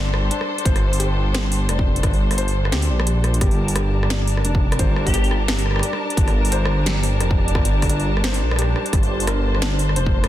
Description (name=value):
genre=half-time drum and bass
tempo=174 BPM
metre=4/4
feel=swing 58% on 16ths, half-time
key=G minor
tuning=A4 = 442 Hz
part: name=muted symphonic string section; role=sustained chords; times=0.0-10.3 s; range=G3 to A5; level=-28 LUFS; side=equal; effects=sidechain pumping
part: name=felt-muted upright piano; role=arpeggios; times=0.0-10.3 s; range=D4 to D5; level=-29 LUFS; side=left 4 dB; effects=digital delay
part: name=dark detuned saw bass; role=bass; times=0.0-10.3 s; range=F1 to D2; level=-20 LUFS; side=equal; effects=none
part: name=drum and bass drum kit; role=drums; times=0.1-10.3 s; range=hi-hat, rim click, snare drum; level=-26 LUFS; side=equal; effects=soft clipping on snare
part: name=electronic kick drum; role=drums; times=0.7-10.1 s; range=none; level=-20 LUFS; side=equal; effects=distortion
part: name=flickering grainy texture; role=texture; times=3.7-10.3 s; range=D4 to D5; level=-32 LUFS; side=right 2 dB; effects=built-in reverb
part: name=airy dreamy lead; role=melody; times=5.1-5.3 s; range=G4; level=-32 LUFS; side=equal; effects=chorus, digital delay
room=digital ambience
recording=dense, heavily limited modern master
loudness=-17 LUFS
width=side -13 dB against mid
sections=0.0-3.4 A section; 3.4-10.3 A section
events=drop 0.0-3.4, 3.4-10.3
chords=0.0 Gmadd9